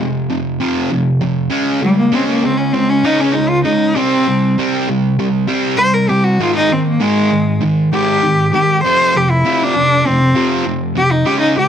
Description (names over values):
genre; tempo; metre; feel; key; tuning
rock; 98 BPM; 4/4; straight; unclear; A4 = 441 Hz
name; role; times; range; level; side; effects
fuzz guitar; riff; 0.0-11.7 s; F2 to Db4; -15 LUFS; right 1 dB; distortion
warm cello; melody; 1.8-11.7 s; G3 to C5; -14 LUFS; left 1 dB; none
room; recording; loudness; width
light reverb; none; -12 LUFS; side -8 dB against mid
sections
0.0-11.7 A section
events
cello solo 0.0-11.7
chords
0.0 F5; 1.5 Db5; 4.0 C5; 6.4 Ab5; 8.8 F5